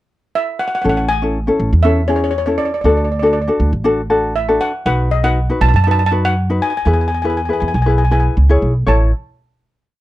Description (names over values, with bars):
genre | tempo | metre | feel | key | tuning
calypso | 120 BPM | 4/4 | straight | A major | A4 = 441 Hz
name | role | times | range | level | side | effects
steel pan | melody | 0.4-9.1 s | C#5 to A5 | -19 LUFS | equal | none
ukulele | accompaniment | 0.8-9.1 s | C#4 to C#5 | -17 LUFS | left 2 dB | none
upright bass | bass | 0.9-9.1 s | A1 to F#2 | -15 LUFS | equal | none
room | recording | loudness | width
little or no reverb | dry, close 1970s-style studio recording | -13 LUFS | side -15 dB against mid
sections
0.0-0.8 pickup bar; 0.8-8.9 verse; 8.9-10.0 final chord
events
none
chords
0.0 N.C.; 0.8 Amaj7; 2.9 D; 4.9 B; 6.9 E; 8.9 A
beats
0.35 | 0.85 1.35 1.85 2.35 | 2.85 3.35 3.85 4.35 | 4.86 5.36 5.86 6.36 | 6.86 7.36 7.87 8.37 | 8.87